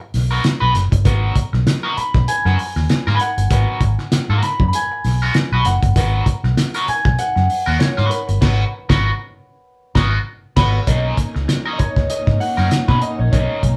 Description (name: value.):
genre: funk.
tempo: 98 BPM.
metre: 4/4.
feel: swing 56% on 16ths.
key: G# minor.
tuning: A4 = 441 Hz.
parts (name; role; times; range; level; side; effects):
concert harp; melody; 0.0-13.8 s; B4 to B5; -25 LUFS; equal; none.
electric guitar at the edge of break-up; accompaniment; 0.0-13.6 s; B3 to B4; -24 LUFS; equal; wah.
vintage muted fingered electric bass; bass; 0.1-13.8 s; F#1 to B2; -20 LUFS; equal; none.
cloth-damped thuddy drum kit; drums; 0.1-13.8 s; crash cymbal, hi-hat, kick drum, snare drum; -21 LUFS; equal; none.
dark chamber string section; sustained chords; 10.9-13.8 s; A#3 to D#4; -31 LUFS; equal; none.
room: moderate studio ambience, RT60 0.5 s.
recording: band playing live in one room.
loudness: -17 LUFS.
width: mono.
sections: 0.0-10.9 A section; 10.9-13.8 B section.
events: band accent 8.4-10.9.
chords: 0.0 G#m9; 10.9 Bmaj9.